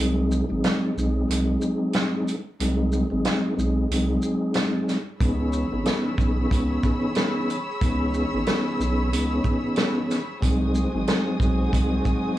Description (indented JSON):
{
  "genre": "hip hop, boom-bap hip-hop",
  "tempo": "92 BPM",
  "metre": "4/4",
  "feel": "swing 59% on 16ths",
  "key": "C# minor",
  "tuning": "A4 = 440 Hz",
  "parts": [
    { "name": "mellow tonewheel organ", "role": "accompaniment", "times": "0.0-12.4 s", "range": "E3 to G#4", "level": "-24 LUFS", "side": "equal", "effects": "chorus vibrato, fast rotary speaker, cassette tape, high-pass filter, low-pass filter" },
    { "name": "saturated sub bass", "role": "bass", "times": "0.0-12.0 s", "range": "G#1 to C#2", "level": "-26 LUFS", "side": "right 1 dB", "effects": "none" },
    { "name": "vintage drum kit", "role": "drums", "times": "0.3-12.2 s", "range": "hi-hat, kick drum, shaker, snare drum", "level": "-26 LUFS", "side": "right 1 dB", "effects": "none" },
    { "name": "warm studio string section", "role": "sustained chords", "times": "5.2-12.4 s", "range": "F#4 to E6", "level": "-32 LUFS", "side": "left 1 dB", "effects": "high-pass filter, low-pass filter" }
  ],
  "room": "light reverb",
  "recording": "studio ambience",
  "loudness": "-21 LUFS",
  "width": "side -14 dB against mid",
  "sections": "0.0-12.4 A section",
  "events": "break 0.0-5.2",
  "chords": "0.0 G#7; 5.2 C#m7; 10.4 G#7",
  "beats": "0.64 1.29 1.95 | 2.60 3.25 3.90 4.55 | 5.21 5.86 6.51 7.16 | 7.81 8.47 9.12 9.77 | 10.42 11.07 11.73 12.38"
}